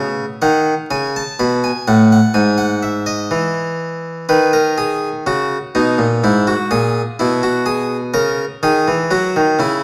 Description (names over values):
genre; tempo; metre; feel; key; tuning
classical, baroque-style two-part invention for harpsichord; 62 BPM; 4/4; straight; E major; A4 = 440 Hz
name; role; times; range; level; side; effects
harpsichord; solo; 0.0-9.8 s; G#2 to B5; -16 LUFS; equal; none
room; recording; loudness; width
moderate recital hall reverb, RT60 1.4 s; vinyl crackle; -16 LUFS; mono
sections
0.0-9.8 A section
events
none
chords
0.4 B7; 2.4 E/G#; 4.3 B/D#; 6.2 E/G#; 8.1 F#7/C#